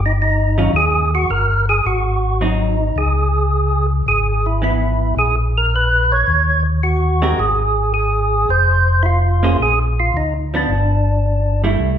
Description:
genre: jazz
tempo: 108 BPM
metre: 4/4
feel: swing 69% on 8ths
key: unclear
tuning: A4 = 440 Hz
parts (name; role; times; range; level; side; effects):
- mellow tonewheel organ; bass; 0.0-12.0 s; F1 to Eb2; -17 LUFS; left 1 dB; chorus vibrato, slow rotary speaker
- percussive tonewheel organ; melody; 0.1-11.6 s; D4 to Db5; -17 LUFS; right 1 dB; slow rotary speaker, overdrive
- vintage hollow-body jazz guitar; accompaniment; 0.6-12.0 s; Eb3 to C5; -22 LUFS; right 2 dB; none
room: wet large studio reverb, RT60 1.2 s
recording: band playing live in one room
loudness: -14 LUFS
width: side -9 dB against mid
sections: 0.0-11.8 A section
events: none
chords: 0.0 Cm (rootless); 0.7 Ebadd11; 1.8 Ab7; 3.0 Dbm7; 5.2 Bbm7; 6.3 Eb; 7.4 N.C.; 8.5 Fm; 9.6 Bb5; 10.7 G5

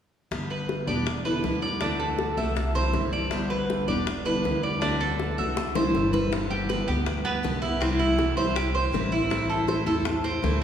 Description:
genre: latin, Cuban son and guajira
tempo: 160 BPM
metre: 4/4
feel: straight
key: G major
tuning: A4 = 440 Hz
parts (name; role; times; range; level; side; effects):
- picked steel-string acoustic guitar; accompaniment; 0.3-10.6 s; C3 to G4; -28 LUFS; left 1 dB; none
- upright bass; bass; 0.3-10.6 s; E1 to E2; -30 LUFS; equal; none
- bongos; percussion; 0.3-10.6 s; none; -32 LUFS; left 3 dB; none
- Cuban tres; arpeggios; 0.5-10.6 s; B3 to E5; -28 LUFS; right 3 dB; none
room: wet cathedral reverb, RT60 4.9 s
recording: recorded in a church or concert hall, studio reverb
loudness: -23 LUFS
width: side -9 dB against mid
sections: 0.3-6.3 A section; 6.3-10.6 B section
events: drum fill 5.6-6.3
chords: 0.3 Em7; 1.8 D7; 2.6 C; 3.3 Em7; 4.8 D7; 5.6 C; 6.3 G; 7.8 C; 9.3 Am

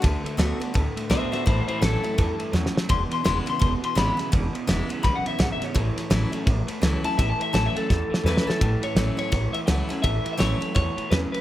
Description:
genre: rockabilly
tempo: 168 BPM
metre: 4/4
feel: swing 60% on 8ths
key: A major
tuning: A4 = 439 Hz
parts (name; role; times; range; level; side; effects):
- picked steel-string acoustic guitar; accompaniment; 0.0-11.4 s; E2 to F#4; -31 LUFS; left 2 dB; none
- electric guitar through a small old amp; riff; 0.0-11.4 s; E2 to B3; -31 LUFS; right 3 dB; spring reverb
- upright bass; bass; 0.0-11.4 s; E1 to E2; -26 LUFS; equal; none
- cloth-damped thuddy drum kit; drums; 0.0-11.4 s; kick drum, ride cymbal, snare drum; -25 LUFS; equal; none
- electric guitar through a small old amp; melody; 1.1-11.4 s; E4 to C6; -28 LUFS; left 3 dB; tape echo
room: little or no reverb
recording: none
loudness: -21 LUFS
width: side -14 dB against mid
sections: 0.0-8.6 A section; 8.6-11.4 B section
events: clean electric guitar solo 0.0-8.6; drum fill 2.5-2.9, 7.9-8.6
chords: 0.0 D; 1.5 A; 2.9 E; 5.8 A

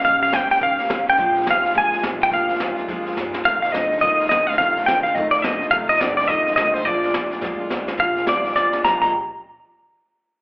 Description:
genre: rockabilly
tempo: 212 BPM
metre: 4/4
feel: swing 61% on 8ths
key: Bb mixolydian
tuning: A4 = 440 Hz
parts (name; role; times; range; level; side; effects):
- semi-hollow electric guitar; melody; 0.0-9.1 s; C5 to Bb5; -17 LUFS; equal; vibrato effect, tape echo
- picked steel-string acoustic guitar; accompaniment; 0.0-9.1 s; F2 to G4; -29 LUFS; equal; slapback echo
- upright bass; bass; 0.0-9.1 s; F1 to A2; -39 LUFS; equal; none
- jazz brush drum kit; drums; 0.0-9.1 s; crash cymbal, hi-hat, kick drum, snare drum; -28 LUFS; equal; none
- electric guitar through a small old amp; riff; 1.2-9.1 s; F2 to G4; -28 LUFS; equal; slapback echo
room: light reverb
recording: live gig heard through the venue's PA, club reverb, telephone sound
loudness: -17 LUFS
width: side -28 dB against mid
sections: 0.0-8.0 A section; 8.0-9.1 B section; 9.1-10.3 C section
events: drum fill 3.2, 7.4-8.0, 8.6-9.1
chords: 0.0 Eb7; 1.2 Bb7; 3.5 F7; 6.9 Bb7; 9.0 Bb6; 9.1 N.C.

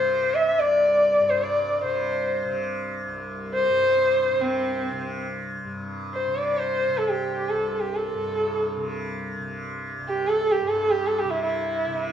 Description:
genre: indian classical, Hindustani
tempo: free time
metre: none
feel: none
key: C raga bhupali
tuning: A4 = 440 Hz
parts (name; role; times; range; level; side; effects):
- warm sarangi; melody; 0.0-12.1 s; C4 to E5; -22 LUFS; equal; none
- tanpura; drone; 0.0-12.1 s; C2 to C3; -32 LUFS; equal; none
room: moderate large studio reverb, RT60 1.2 s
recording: band playing live in one room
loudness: -22 LUFS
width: side -9 dB against mid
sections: 0.0-5.6 A section; 5.6-12.1 A section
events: none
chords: none

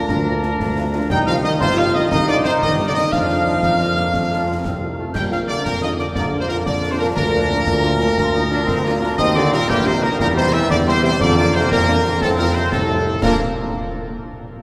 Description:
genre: military-style march for wind band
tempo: 119 BPM (dotted quarters)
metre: 6/8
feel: straight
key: Bb major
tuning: A4 = 436 Hz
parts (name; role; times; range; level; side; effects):
- bright trumpet section; melody; 0.0-13.4 s; G4 to G5; -25 LUFS; equal; none
- bright wooden piccolo; second line; 0.0-13.4 s; G5 to G6; -29 LUFS; equal; none
- mellow euphonium; second line; 0.0-13.4 s; G2 to Bb3; -26 LUFS; equal; none
- mellow woodwind section; second line; 0.0-13.4 s; G4 to G5; -29 LUFS; equal; none
- clear trombone section; sustained chords; 0.0-13.4 s; F3 to F4; -27 LUFS; equal; none
- mellow tuba; bass; 0.1-13.4 s; G1 to Bb2; -24 LUFS; equal; none
- concert snare drum, concert bass drum and clash cymbals; drums; 0.1-13.4 s; none; -30 LUFS; equal; none
- warm French horn section; accompaniment; 0.3-13.4 s; F3 to G4; -31 LUFS; equal; none
room: wet cathedral reverb, RT60 4.9 s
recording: recorded in a church or concert hall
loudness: -18 LUFS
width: mono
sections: 0.0-13.2 A section; 13.2-14.2 B section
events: none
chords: 0.0 Bb/D; 1.1 Cm; 3.1 Bb/F; 4.1 F; 5.1 Bb; 7.2 Bb/D; 9.2 Eb; 10.2 C/E; 11.2 Bb/F; 12.2 F7; 13.2 Bb

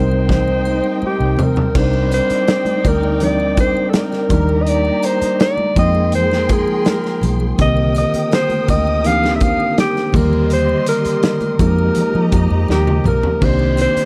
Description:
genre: lush 1970s-style soul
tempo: 82 BPM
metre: 4/4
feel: straight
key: C minor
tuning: A4 = 439 Hz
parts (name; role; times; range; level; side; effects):
- mellow alto saxophone; melody; 0.0-14.1 s; G4 to F5; -21 LUFS; equal; none
- warm studio string section; second line; 0.0-14.1 s; Eb4 to Eb6; -29 LUFS; equal; none
- mellow tine electric piano; accompaniment; 0.0-14.1 s; D3 to G5; -22 LUFS; equal; none
- warm French horn section; sustained chords; 0.0-14.1 s; C3 to D5; -33 LUFS; equal; none
- vintage muted fingered electric bass; bass; 0.0-14.0 s; B1 to F3; -20 LUFS; equal; none
- triangle; percussion; 0.1-14.1 s; none; -45 LUFS; equal; none
- modern studio drum kit; drums; 0.3-14.1 s; crash cymbal, hi-hat, kick drum, snare drum, toms; -22 LUFS; equal; none
- congas; percussion; 0.3-13.8 s; none; -31 LUFS; equal; none
room: little or no reverb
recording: none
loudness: -16 LUFS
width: mono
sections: 0.0-1.8 A section; 1.8-14.1 A section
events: drum fill 0.3-1.8, 12.7-13.4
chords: 0.0 Cm7; 1.8 Cm9; 4.3 Ebmaj7; 5.8 Fm11; 7.6 Cm9; 10.1 Ebmaj7; 11.6 Fm11; 13.4 Cm9

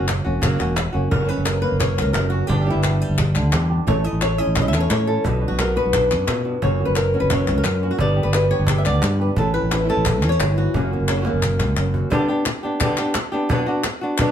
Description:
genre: flamenco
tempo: 175 BPM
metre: 4/4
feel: straight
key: F# phrygian dominant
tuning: A4 = 440 Hz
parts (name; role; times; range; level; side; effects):
- flamenco guitar; melody; 0.0-14.3 s; F#2 to E5; -22 LUFS; left 1 dB; none
- fretless electric bass; bass; 0.0-12.0 s; E1 to B2; -21 LUFS; equal; none
- cajon; percussion; 0.1-14.3 s; none; -25 LUFS; right 1 dB; none
- palmas hand claps; percussion; 0.1-14.3 s; none; -26 LUFS; left 4 dB; none
- flamenco guitar; stabs; 1.1-12.1 s; B2 to G4; -28 LUFS; right 3 dB; none
room: wet studio reverb, RT60 0.6 s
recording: heard from further back in the room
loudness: -17 LUFS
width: side -9 dB against mid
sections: 0.0-1.1 A section; 1.1-12.1 B section; 12.1-14.3 A section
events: drum fill 11.3-12.1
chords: 0.0 F#; 2.5 G; 3.9 A; 5.2 Bm; 6.6 F#; 8.0 G; 9.4 A; 10.7 F#; 12.1 G; 13.5 Bm

